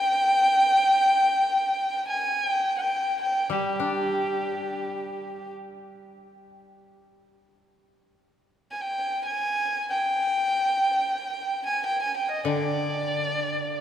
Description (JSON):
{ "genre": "japanese traditional, Japanese chamber music", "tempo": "free time", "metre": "none", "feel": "none", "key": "unclear", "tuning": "A4 = 439 Hz", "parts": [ { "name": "dark violin", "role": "melody", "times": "0.0-13.8 s", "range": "G4 to Ab5", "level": "-23 LUFS", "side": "equal", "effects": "none" }, { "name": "koto", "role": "accompaniment", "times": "3.5-13.8 s", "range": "D3 to D4", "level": "-30 LUFS", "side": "left 2 dB", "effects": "none" } ], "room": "wet cathedral reverb, RT60 4.5 s", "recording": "recorded in a church or concert hall", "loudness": "-22 LUFS", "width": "side -10 dB against mid", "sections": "0.0-7.5 A section; 7.5-13.8 A section", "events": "none", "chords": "none" }